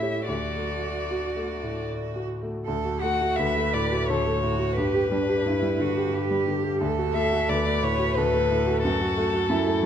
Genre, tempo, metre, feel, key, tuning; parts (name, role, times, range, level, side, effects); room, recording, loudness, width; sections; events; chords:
classical, slow romantic movement for piano trio; 71-90 BPM; 3/4; rubato; D major; A4 = 440 Hz
rich violin; melody; 0.0-9.9 s; A4 to F#5; -28 LUFS; left 5 dB
rich cello; second line; 0.0-9.9 s; D4 to B4; -30 LUFS; right 8 dB
clear grand piano; accompaniment; 0.0-9.9 s; D2 to D5; -25 LUFS; equal
wet recital hall reverb, RT60 1.5 s; dark, warm production; -23 LUFS; side -9 dB against mid
0.0-2.7 A section; 2.7-9.9 B section
0.3 D; 4.8 G; 6.8 D; 8.8 F#m7